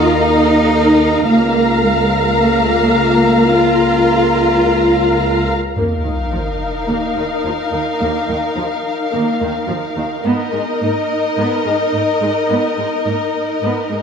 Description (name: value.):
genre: cinematic, hybrid orchestral and electronic film score.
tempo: 107 BPM.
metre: 4/4.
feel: straight.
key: unclear.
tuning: A4 = 439 Hz.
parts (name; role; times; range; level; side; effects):
rich symphonic violin section; second line; 0.0-14.0 s; Bb4 to Bb5; -19 LUFS; left 4 dB; none.
warm symphonic viola section; accompaniment; 0.0-14.0 s; Eb3 to F5; -19 LUFS; right 2 dB; none.
mellow French horn section; sustained chords; 0.0-5.4 s; Bb3 to F4; -18 LUFS; left 5 dB; none.
rich symphonic cello section; bass; 0.0-14.0 s; Eb2 to F4; -18 LUFS; right 2 dB; none.
rich symphonic double bass section; bass; 0.0-5.5 s; Db2 to Eb2; -20 LUFS; right 3 dB; none.
sub drop and reverse cymbal; sound effects; 5.8-8.0, 12.5-14.0 s; none; -23 LUFS; equal; none.
room: wet scoring stage reverb, RT60 2.1 s.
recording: none.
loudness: -13 LUFS.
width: side -6 dB against mid.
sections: 0.0-5.8 A section; 5.8-14.0 B section.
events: impact 5.8-8.0.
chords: 0.0 Ebsus2; 1.3 Bbm/Db; 5.8 Ebsus2; 10.3 Abmadd9.